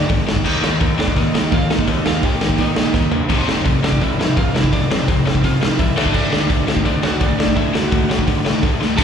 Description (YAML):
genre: punk rock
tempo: 169 BPM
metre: 4/4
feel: straight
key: unclear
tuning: A4 = 444 Hz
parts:
  - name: lightly driven lead guitar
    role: melody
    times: 0.0-9.0 s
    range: C4 to A5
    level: -25 LUFS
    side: right 3 dB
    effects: slapback echo, ping-pong delay
  - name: crunchy overdriven guitar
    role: riff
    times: 0.0-9.0 s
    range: F2 to Eb4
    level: -25 LUFS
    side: right 13 dB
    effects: slapback echo
  - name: tight distorted guitar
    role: riff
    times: 0.0-9.0 s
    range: F2 to Eb4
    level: -21 LUFS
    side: left 7 dB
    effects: distortion, slapback echo
  - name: fuzz picked electric bass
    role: bass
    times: 0.0-9.0 s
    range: F1 to Eb3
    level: -23 LUFS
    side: right 1 dB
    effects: overdrive
  - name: raw garage drum kit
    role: drums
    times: 0.1-9.0 s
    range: crash cymbal, hi-hat, kick drum, snare drum, toms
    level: -18 LUFS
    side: equal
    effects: none
room: little or no reverb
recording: live gig heard through the venue's PA, recital hall reverb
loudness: -14 LUFS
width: side -8 dB against mid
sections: 0.0-9.0 A section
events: drum fill 2.9-3.3, 8.8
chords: 0.5 Eb; 3.3 F5; 6.0 D